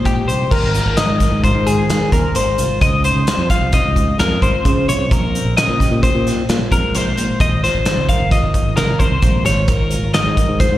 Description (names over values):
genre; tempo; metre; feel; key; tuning
math rock and midwest emo; 131 BPM; 5/4; straight; unclear; A4 = 440 Hz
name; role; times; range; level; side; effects
mellow electric guitar; accompaniment; 0.0-10.8 s; F2 to C5; -23 LUFS; right 4 dB; slapback echo
twelve-string electric guitar; arpeggios; 0.0-10.8 s; G4 to F5; -19 LUFS; left 3 dB; spring reverb, slapback echo
modern bright fingered electric bass; bass; 0.0-10.8 s; F1 to Db3; -19 LUFS; equal; none
modern studio drum kit; drums; 0.1-10.7 s; crash cymbal, hi-hat, kick drum, snare drum; -18 LUFS; equal; none
room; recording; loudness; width
studio ambience; live gig heard through the venue's PA, recital hall reverb; -13 LUFS; side -14 dB against mid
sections
0.5-10.8 A section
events
none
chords
0.0 Fm9; 0.5 Ab69; 2.8 Dbmaj9; 5.1 Bbm11; 7.4 Ab69